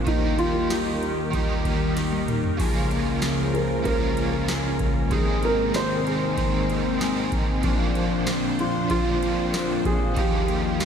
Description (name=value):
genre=dream pop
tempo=95 BPM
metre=4/4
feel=straight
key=Ab major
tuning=A4 = 437 Hz
part: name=felt-muted upright piano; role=melody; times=0.0-10.8 s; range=Eb4 to C5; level=-28 LUFS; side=right 2 dB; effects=wide subtle chorus, ping-pong delay
part: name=overdriven semi-hollow guitar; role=accompaniment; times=0.0-10.8 s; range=Bb2 to Bb4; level=-30 LUFS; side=right 5 dB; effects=tremolo, analog chorus
part: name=string machine, cellos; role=sustained chords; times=0.0-10.8 s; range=Db2 to C5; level=-27 LUFS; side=left 1 dB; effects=ensemble chorus
part: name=mellow electric guitar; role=arpeggios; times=0.0-10.8 s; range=Eb3 to Ab4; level=-30 LUFS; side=left 6 dB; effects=analog chorus, ping-pong delay
part: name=booming analog drum machine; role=drums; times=0.1-10.8 s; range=crash cymbal, kick drum, ride cymbal, snare drum, tambourine, toms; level=-27 LUFS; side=equal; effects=none
part: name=concert harp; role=texture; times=3.2-5.5, 9.5-10.8 s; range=Ab4 to F5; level=-36 LUFS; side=left 4 dB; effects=ping-pong delay
room=moderate lush hall reverb, RT60 2.6 s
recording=dreamy mix soaked in reverb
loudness=-21 LUFS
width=side -7 dB against mid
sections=0.0-10.8 A section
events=drum fill 2.0-2.6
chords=0.1 Eb; 2.6 Db6; 5.1 Abadd9; 7.6 Bbadd9; 10.2 Ebadd9